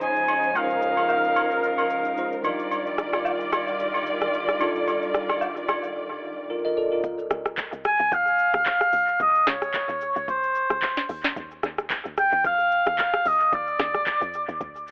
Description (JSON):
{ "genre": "amapiano", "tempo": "111 BPM", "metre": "4/4", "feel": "swing 55% on 16ths", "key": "unclear", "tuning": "A4 = 441 Hz", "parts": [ { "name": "warm oboe", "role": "melody", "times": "0.0-2.4, 7.9-14.6 s", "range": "C5 to Ab5", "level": "-24 LUFS", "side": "equal", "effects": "analog delay" }, { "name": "bell-like tine electric piano", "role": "accompaniment", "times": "0.0-7.2 s", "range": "F3 to Eb5", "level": "-32 LUFS", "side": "equal", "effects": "phaser, analog delay" }, { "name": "warm studio string section", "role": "sustained chords", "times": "0.0-7.0 s", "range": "Db3 to D5", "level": "-30 LUFS", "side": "equal", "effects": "none" }, { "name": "afro-pop drum kit", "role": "drums", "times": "0.0-14.9 s", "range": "handclaps, hi-hat, kick drum, rim click, shaker, snare drum", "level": "-30 LUFS", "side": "equal", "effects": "analog delay" }, { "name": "agogo bells and woodblock", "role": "percussion", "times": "0.3-5.8 s", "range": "none", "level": "-32 LUFS", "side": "equal", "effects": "analog delay" }, { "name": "woody log drum bass", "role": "bass", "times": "7.0-14.9 s", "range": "C2 to F2", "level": "-40 LUFS", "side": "equal", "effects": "none" } ], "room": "light reverb, small room ambience", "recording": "echo-heavy mix, telephone sound", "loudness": "-24 LUFS", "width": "mono", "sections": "0.0-7.0 A section; 7.0-14.9 B section", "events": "drop 7.0-14.9", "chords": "0.0 Dbmaj9; 2.4 Ebmaj9; 7.0 Dbmaj9; 11.1 Ebmaj7sus2" }